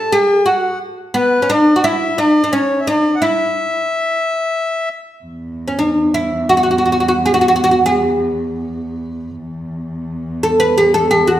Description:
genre	Arabic maqam ensemble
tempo	58 BPM (dotted quarters)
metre	6/8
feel	straight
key	E maqam rast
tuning	A4 = 440 Hz
part	oud	melody	0.0-11.4 s	B3 to B4	-13 LUFS	equal	none
part	accordion	second line	0.0-4.9 s	B4 to A5	-18 LUFS	left 2 dB	none
part	dark cello	drone	5.2-11.4 s	E2	-22 LUFS	right 1 dB	none
room	wet recital hall reverb, RT60 1.3 s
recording	none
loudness	-13 LUFS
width	side -12 dB against mid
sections	0.0-5.3 A section; 5.3-11.4 B section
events	none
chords	none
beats	0.13 | 1.16 2.18 | 3.21 4.24 | 5.27 6.30 | 7.33 8.36 | 9.39 10.43

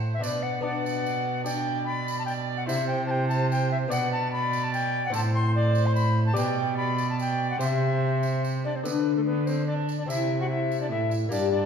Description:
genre	classical, renaissance-style consort dance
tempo	146 BPM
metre	3/4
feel	straight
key	unclear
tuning	A4 = 442 Hz
part	warm viola	second line	0.0-11.7 s	A3 to D5	-34 LUFS	right 5 dB	none
part	lute	accompaniment	0.0-11.7 s	G2 to D5	-31 LUFS	left 4 dB	none
part	rich cello	bass	0.0-11.7 s	G2 to D3	-27 LUFS	right 2 dB	none
part	bright tenor recorder	melody	0.1-11.7 s	A4 to C6	-29 LUFS	left 3 dB	none
part	tambourine	percussion	0.2-11.5 s	none	-43 LUFS	right 6 dB	none
room	wet recital hall reverb, RT60 1.3 s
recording	heard from further back in the room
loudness	-24 LUFS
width	side -7 dB against mid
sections	0.0-8.9 A section; 8.9-11.7 B section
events	none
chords	0.2 Bm; 2.7 C; 3.9 Bm; 5.1 Am; 6.4 G/B; 7.6 C; 8.9 D5; 10.1 C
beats	| 0.23 0.64 1.05 | 1.46 1.87 2.28 | 2.69 3.09 3.50 | 3.91 4.32 4.73 | 5.13 5.54 5.95 | 6.36 6.77 7.19 | 7.60 8.02 8.44 | 8.85 9.27 9.68 | 10.09 10.50 10.91 | 11.32

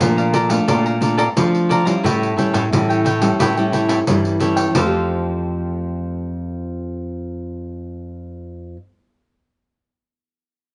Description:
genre	samba and choro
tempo	88 BPM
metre	4/4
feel	straight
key	F major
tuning	A4 = 438 Hz
part	nylon-string guitar	accompaniment	0.0-8.9 s	A2 to G4	-24 LUFS	equal	none
part	nylon-string guitar	bass	0.0-8.8 s	F2 to F3	-24 LUFS	equal	none
part	pandeiro	percussion	0.0-4.9 s	none	-24 LUFS	equal	none
part	cavaquinho	accompaniment	0.2-8.8 s	E4 to Bb5	-24 LUFS	equal	none
room	moderate studio reverb, RT60 0.7 s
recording	nothing above 10.6 kHz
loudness	-18 LUFS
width	mono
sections	0.0-4.8 A section; 4.8-7.5 B section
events	none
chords	0.0 Bbmaj7; 2.0 A7; 4.8 Fadd9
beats	0.01 0.69 1.36 | 2.04 2.72 3.40 4.08 | 4.75 5.43 6.11 6.79

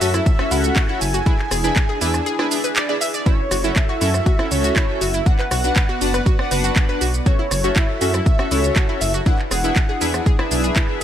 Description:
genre	progressive house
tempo	120 BPM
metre	4/4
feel	straight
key	F# minor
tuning	A4 = 440 Hz
part	wide unison lead	melody	0.0-10.2 s	C#5 to G#5	-26 LUFS	equal	sidechain pumping, dub echo
part	supersaw pad	sustained chords	0.0-11.0 s	B3 to F#5	-28 LUFS	right 1 dB	sidechain pumping
part	analog pluck	arpeggios	0.0-11.0 s	E4 to E5	-26 LUFS	right 1 dB	chorus, sidechain pumping, dub echo
part	chorused polysynth	stabs	0.0-11.0 s	C#4 to F#5	-25 LUFS	left 2 dB	sidechain pumping, dub echo
part	dark detuned saw bass	bass	0.0-11.0 s	E1 to F#2	-22 LUFS	equal	sidechain pumping
part	house drum kit	drums	0.0-11.0 s	handclaps, hi-hat, rim click, shaker	-24 LUFS	right 2 dB	sidechain pumping on hats, sidechain pumping on perc
part	electronic kick drum	drums	0.3-10.9 s	none	-17 LUFS	equal	none
room	digital ambience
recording	none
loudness	-16 LUFS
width	side -10 dB against mid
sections	0.0-11.0 A section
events	none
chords	0.0 F#m7; 1.3 E7; 3.3 F#m7; 5.3 Bm; 7.3 F#m7; 9.3 E7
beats	0.26 0.76 | 1.26 1.76 2.26 2.76 | 3.26 3.76 4.26 4.76 | 5.26 5.76 6.26 6.76 | 7.26 7.76 8.26 8.76 | 9.26 9.76 10.26 10.76

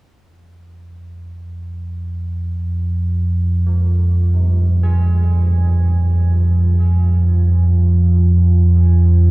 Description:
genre	dark ambient drone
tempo	free time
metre	none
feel	none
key	F minor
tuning	A4 = 439 Hz
part	deep rumbling drone	drone	1.2-9.3 s	F2 to F3	-13 LUFS	right 1 dB	built-in reverb
part	old church bells	arpeggios	3.7-9.3 s	G2 to Ab4	-30 LUFS	equal	diffuse ambient delay
room	moderate huge ambient reverb, RT60 7.8 s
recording	worn, warbling old tape, cassette tape, warbly pitch drift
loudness	-12 LUFS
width	side -23 dB against mid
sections	0.1-9.3 A section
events	fade-in on church bells 0.1-9.3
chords	0.1 Fmadd9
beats	free time

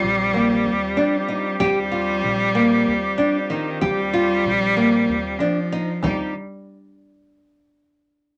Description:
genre	contemporary instrumental, chamber music in an uneven meter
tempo	190 BPM (eighths)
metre	7/8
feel	straight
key	Eb major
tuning	A4 = 439 Hz
part	bright cello	second line	0.0-6.3 s	Eb3 to G3	-24 LUFS	equal	none
part	warm woodwind section	sustained chords	0.0-6.3 s	F3 to G4	-32 LUFS	equal	none
part	nylon-string guitar	arpeggios	0.0-6.3 s	Bb3 to G4	-23 LUFS	equal	none
part	upright bass	bass	0.0-6.3 s	Bb1 to Eb2	-35 LUFS	equal	none
part	frame drum	percussion	0.0-6.3 s	none	-31 LUFS	equal	none
room	moderate booth ambience, RT60 0.2 s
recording	none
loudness	-20 LUFS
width	mono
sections	0.0-6.0 A section; 6.0-8.2 B section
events	none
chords	0.0 Eb69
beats	0.03 0.34 0.66 0.97 1.29 | 1.61 1.92 2.24 2.55 2.87 3.19 3.50 | 3.82 4.13 4.45 4.76 5.08 5.40 5.71 | 6.03

